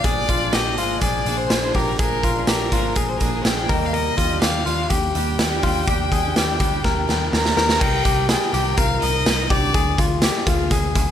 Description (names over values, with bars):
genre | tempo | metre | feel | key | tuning
jangly indie pop | 124 BPM | 4/4 | straight | unclear | A4 = 437 Hz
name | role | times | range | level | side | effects
clear violin | melody | 0.0-10.0 s | Ab4 to Bb5 | -24 LUFS | left 2 dB | none
picked acoustic archtop guitar | accompaniment | 0.0-7.8 s | Eb3 to Ab4 | -28 LUFS | right 5 dB | none
direct-recorded clean electric guitar | arpeggios | 0.0-11.1 s | F4 to Bb4 | -25 LUFS | left 6 dB | harmonic tremolo
vintage muted picked electric bass | bass | 0.0-11.1 s | Ab1 to Eb2 | -25 LUFS | equal | none
raw garage drum kit | drums | 0.0-11.1 s | crash cymbal, hi-hat, kick drum, snare drum | -21 LUFS | right 1 dB | none
vibraphone with medium hard mallets | second line | 7.3-10.0 s | D4 to Bb4 | -30 LUFS | right 5 dB | digital delay
warm studio string section | sustained chords | 7.8-11.1 s | D3 to Bb4 | -31 LUFS | left 2 dB | none
room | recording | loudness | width
moderate small room reverb, RT60 0.5 s | none | -17 LUFS | side -9 dB against mid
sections
0.0-7.8 A section; 7.8-11.1 B section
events
drum fill 6.8-7.8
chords
0.0 Bb7; 3.7 Ebmaj7; 7.8 Cm7; 9.7 Bb7/D